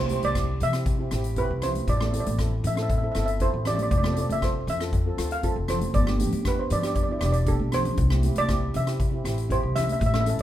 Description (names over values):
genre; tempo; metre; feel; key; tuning
calypso; 118 BPM; 4/4; straight; C major; A4 = 441 Hz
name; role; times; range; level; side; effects
steel pan; melody; 0.0-10.4 s; A4 to F5; -28 LUFS; right 2 dB; none
steel pan; accompaniment; 0.0-10.4 s; B3 to A4; -32 LUFS; equal; none
upright bass; bass; 0.0-10.4 s; E1 to C3; -27 LUFS; equal; none
street-band drum kit; drums; 0.1-10.4 s; hi-hat, kick drum, rim click; -29 LUFS; left 1 dB; none
congas; percussion; 0.2-10.4 s; none; -32 LUFS; right 1 dB; none
room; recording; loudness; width
little or no reverb; minimal, uncompressed stereo recording; -22 LUFS; side -12 dB against mid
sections
0.0-10.4 A section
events
drum fill 7.5-8.0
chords
0.0 C; 1.9 Am; 3.9 F; 5.9 G; 8.0 C